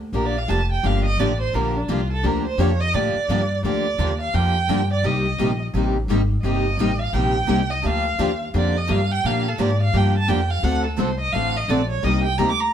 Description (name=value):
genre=acoustic string swing (jazz manouche)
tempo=172 BPM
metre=4/4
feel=swing 62% on 8ths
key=G minor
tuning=A4 = 438 Hz
part: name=upright bass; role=bass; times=0.0-12.7 s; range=F1 to Bb2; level=-22 LUFS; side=equal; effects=none
part: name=warm violin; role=second line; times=0.1-12.7 s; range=D4 to D6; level=-24 LUFS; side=right 2 dB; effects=none
part: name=picked steel-string acoustic guitar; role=accompaniment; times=0.1-12.5 s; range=C3 to A4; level=-26 LUFS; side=left 5 dB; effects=none
part: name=picked steel-string acoustic guitar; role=accompaniment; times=0.1-12.5 s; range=C3 to A4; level=-27 LUFS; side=right 4 dB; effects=none
room=moderate studio reverb, RT60 0.8 s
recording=band playing live in one room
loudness=-18 LUFS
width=side -9 dB against mid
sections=0.0-12.7 A section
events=violin solo 0.0-12.7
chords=0.0 Gm7; 5.0 Cm7; 7.8 Gm7; 10.6 D7; 12.0 Cm7